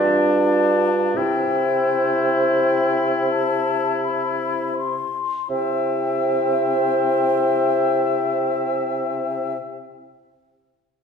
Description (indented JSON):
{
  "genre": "classical, slow romantic movement for wind quintet",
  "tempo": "39-48 BPM",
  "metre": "3/4",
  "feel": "rubato",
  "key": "C major",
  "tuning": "A4 = 444 Hz",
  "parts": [
    { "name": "mellow hollow concert flute", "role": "melody", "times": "0.0-9.6 s", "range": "G5 to C6", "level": "-26 LUFS", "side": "left 5 dB", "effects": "none" },
    { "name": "warm oboe", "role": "second line", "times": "0.0-9.6 s", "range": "D4 to E5", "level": "-26 LUFS", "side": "left 5 dB", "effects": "none" },
    { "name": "dark clarinet", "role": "accompaniment", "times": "0.0-9.6 s", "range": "C5 to D5", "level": "-23 LUFS", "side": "right 2 dB", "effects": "none" },
    { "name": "warm French horn", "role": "accompaniment", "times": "0.0-9.6 s", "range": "E4 to F4", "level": "-27 LUFS", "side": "left 1 dB", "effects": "none" },
    { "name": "mellow bassoon", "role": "bass", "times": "0.0-9.6 s", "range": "G2 to C3", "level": "-24 LUFS", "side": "right 1 dB", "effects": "none" }
  ],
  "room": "wet recital hall reverb, RT60 1.6 s",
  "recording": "recorded in a church or concert hall",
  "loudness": "-18 LUFS",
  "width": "side -6 dB against mid",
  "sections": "0.0-5.5 A section; 5.5-9.6 B section",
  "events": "slowing down 0.0-5.5",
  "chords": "0.0 Gsus2; 1.2 C"
}